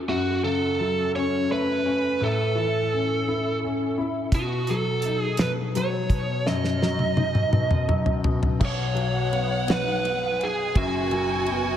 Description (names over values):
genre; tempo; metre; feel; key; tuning
six-eight pop ballad; 56 BPM (dotted quarters); 6/8; straight; unclear; A4 = 440 Hz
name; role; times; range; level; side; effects
clear grand piano; accompaniment; 0.0-11.8 s; F#1 to E4; -26 LUFS; left 3 dB; ensemble chorus
biting lead guitar; melody; 0.1-11.8 s; F#4 to D#5; -26 LUFS; right 4 dB; overdrive, diffuse ambient delay
damped 70s drum kit; drums; 4.3-11.6 s; crash cymbal, hi-hat, kick drum, ride cymbal, snare drum, toms; -24 LUFS; equal; none
warm studio violin section; second line; 8.6-11.8 s; F#5 to G#5; -30 LUFS; right 1 dB; none
room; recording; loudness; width
moderate plate reverb, RT60 2.6 s; dreamy mix soaked in reverb; -22 LUFS; side -10 dB against mid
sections
0.1-8.6 A section; 8.6-11.8 B section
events
drum fill 6.5-8.6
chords
0.1 F#m; 2.2 A; 4.3 B